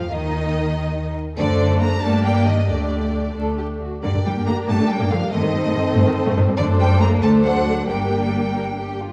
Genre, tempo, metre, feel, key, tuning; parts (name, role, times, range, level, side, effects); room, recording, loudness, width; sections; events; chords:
quick classical-period movement for string orchestra; 88-96 BPM (dotted quarters); 6/8; rubato; G minor; A4 = 441 Hz
rich studio violin section; melody; 0.0-9.0 s; D5 to Bb5; -30 LUFS; equal
rich studio viola section; accompaniment; 0.0-9.0 s; D3 to D4; -26 LUFS; equal
rich studio double bass section; bass; 0.0-9.0 s; G1 to G2; -24 LUFS; equal
dark studio violin section; second line; 0.1-9.1 s; Eb4 to D5; -28 LUFS; equal
rich studio cello section; bass; 0.1-9.0 s; D3 to Bb3; -26 LUFS; equal
moderate scoring stage reverb, RT60 1.9 s; dark, warm production, vinyl crackle; -20 LUFS; mono
0.0-9.1 A section
0.1 N.C.; 1.4 D7/F#; 2.0 Gm; 2.7 Dsus4; 4.0 Gm; 5.3 Am7b5/G; 6.6 D7/F#; 7.2 D7; 7.9 Gm